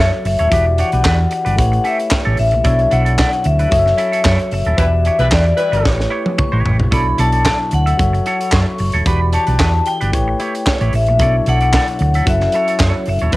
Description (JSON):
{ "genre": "disco", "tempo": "112 BPM", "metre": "4/4", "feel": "straight", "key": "B minor", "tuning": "A4 = 442 Hz", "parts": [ { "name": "vibraphone with medium hard mallets", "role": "melody", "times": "0.0-13.4 s", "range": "C#5 to C#6", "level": "-18 LUFS", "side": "left 2 dB", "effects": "cassette tape" }, { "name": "barky tine electric piano", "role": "accompaniment", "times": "0.0-13.4 s", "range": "B2 to F#5", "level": "-24 LUFS", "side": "left 2 dB", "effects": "cassette tape" }, { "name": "twangy electric guitar", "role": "accompaniment", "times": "0.0-13.4 s", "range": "C#4 to E5", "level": "-24 LUFS", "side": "right 3 dB", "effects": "harmonic tremolo, cassette tape" }, { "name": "hollow-body short-scale fingered electric bass", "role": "bass", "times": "0.0-13.4 s", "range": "D#1 to F#2", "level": "-16 LUFS", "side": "equal", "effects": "none" }, { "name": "tight funk drum kit", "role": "drums", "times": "0.0-13.4 s", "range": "handclaps, hi-hat, kick drum, snare drum, toms", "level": "-18 LUFS", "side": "equal", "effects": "cassette tape" }, { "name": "mellow horn section", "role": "stabs", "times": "4.8-5.9, 13.3-13.4 s", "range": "G3 to B4", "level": "-23 LUFS", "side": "right 2 dB", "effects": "cassette tape" } ], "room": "light reverb, studio ambience", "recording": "home recording on cassette", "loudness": "-13 LUFS", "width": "side -18 dB against mid", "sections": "0.0-13.4 A section", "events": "band accent 4.8-6.9; drum fill 5.9-6.9", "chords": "0.0 F#m7; 0.5 Em7; 1.6 A7; 2.6 Bm11; 3.7 F#m7; 4.8 Em7; 5.9 A7; 6.9 Bm11; 8.0 F#m7; 9.1 Em7; 10.1 A7; 11.2 Bm11; 12.3 F#m7" }